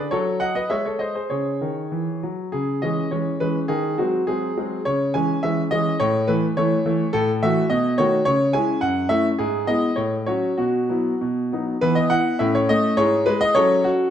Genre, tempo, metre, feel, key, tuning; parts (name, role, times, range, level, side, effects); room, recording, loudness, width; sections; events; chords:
classical-period piano sonatina; 95-107 BPM; 2/4; rubato; C# minor, E major from 7.1 s; A4 = 440 Hz
clear grand piano; solo; 0.0-14.1 s; F#2 to G#5; -19 LUFS; equal
wet stone room reverb, RT60 1.1 s; dark, warm production; -19 LUFS; side -9 dB against mid
0.0-2.5 A section; 2.5-11.8 B section; 11.8-14.1 C section
0.1 F#m; 0.7 G#; 1.3 C#m; 3.7 G#7/D#; 4.9 C#m; 6.0 A; 7.1 F#m7/A; 7.7 B7; 8.3 C#m; 8.8 F#m7; 9.4 E/G#; 10.0 F#m/A; 10.6 Bsus4; 11.2 B; 11.8 E5; 12.4 A; 13.0 E/G#; 13.6 F#m